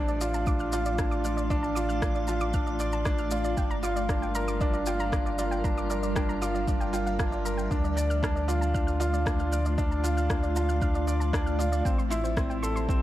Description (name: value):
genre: piano and strings electronica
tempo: 116 BPM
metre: 4/4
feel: straight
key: D minor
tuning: A4 = 440 Hz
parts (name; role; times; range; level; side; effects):
- granular cloud pad; sustained chords; 0.0-13.0 s; G3 to E5; -36 LUFS; equal; built-in reverb, sidechain pumping, shimmer reverb
- felt-muted upright piano; riff; 0.0-13.0 s; C4 to D5; -30 LUFS; right 1 dB; digital delay, shimmer reverb
- warm sub bass; bass; 0.0-13.0 s; G1 to D2; -30 LUFS; equal; sidechain pumping
- soft round pluck; arpeggios; 0.1-13.0 s; C5 to F6; -38 LUFS; right 2 dB; chorus, sidechain pumping, digital delay, shimmer reverb
- electronic shaker and rim click; drums; 0.1-13.0 s; none; -38 LUFS; left 1 dB; small room ambience
- electronic kick drum; drums; 0.5-13.0 s; none; -29 LUFS; equal; small room ambience
room: light reverb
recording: none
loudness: -25 LUFS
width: side -14 dB against mid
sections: 0.0-13.0 A section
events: none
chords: 0.0 Dm/A; 3.6 Gm7; 7.7 Dm; 11.8 Am7